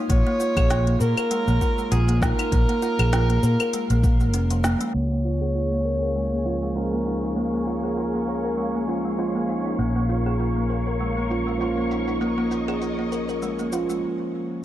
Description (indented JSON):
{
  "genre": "organic downtempo",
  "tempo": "99 BPM",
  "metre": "4/4",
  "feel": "swing 56% on 16ths",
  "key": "Bb minor pentatonic",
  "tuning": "A4 = 440 Hz",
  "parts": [
    { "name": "kalimba", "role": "arpeggios", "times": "0.0-14.0 s", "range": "F3 to Bb4", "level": "-26 LUFS", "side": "equal", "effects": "low-pass filter, tape echo" },
    { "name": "drifting glass-harmonics texture", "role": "texture", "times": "0.0-14.0 s", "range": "Db4 to F5", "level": "-38 LUFS", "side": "equal", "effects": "chorus, built-in reverb" },
    { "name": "clear kamancheh", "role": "melody", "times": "0.1-9.4 s", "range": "Ab4 to Db5", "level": "-29 LUFS", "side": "right 1 dB", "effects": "tape echo" },
    { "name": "fretless electric bass", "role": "bass", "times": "0.1-14.0 s", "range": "F1 to Bb2", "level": "-24 LUFS", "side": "equal", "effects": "sidechain pumping" },
    { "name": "electronic kick drum", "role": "drums", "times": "0.1-4.2 s", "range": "none", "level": "-22 LUFS", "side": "equal", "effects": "none" },
    { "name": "organic electronic drum kit", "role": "drums", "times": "0.1-14.0 s", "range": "claves, hi-hat, shaker, snare drum", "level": "-31 LUFS", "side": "left 1 dB", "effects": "none" },
    { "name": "dark symphonic string section", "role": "sustained chords", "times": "4.9-14.0 s", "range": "Ab4 to Db6", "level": "-33 LUFS", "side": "left 1 dB", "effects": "sidechain pumping, low-pass filter" },
    { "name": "bright tine electric piano", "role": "accompaniment", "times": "6.4-14.6 s", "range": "F3 to F4", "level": "-29 LUFS", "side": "right 1 dB", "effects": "sidechain pumping, tape echo" }
  ],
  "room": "light reverb, digital ambience",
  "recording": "dark, warm production, low-pass filter",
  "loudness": "-21 LUFS",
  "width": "side -13 dB against mid",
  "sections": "0.0-4.9 A section; 4.9-14.6 B section",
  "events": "break 4.3-4.9; band accent 4.6-4.9; filter sweep on kalimba 4.9-14.6; filter sweep on string section 4.9-14.6; filter sweep 4.9-14.6; stop 14.0-14.6",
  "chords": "0.1 Bb5; 4.9 Db; 9.8 Bbm",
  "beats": "| 0.09 0.70 1.31 1.91 | 2.52 3.12 3.73 4.34 | 4.94 5.55 6.16 6.76 | 7.37 7.97 8.58 9.19 | 9.79 10.40 11.00 11.61 | 12.21 12.82 13.43 14.03 | 14.64"
}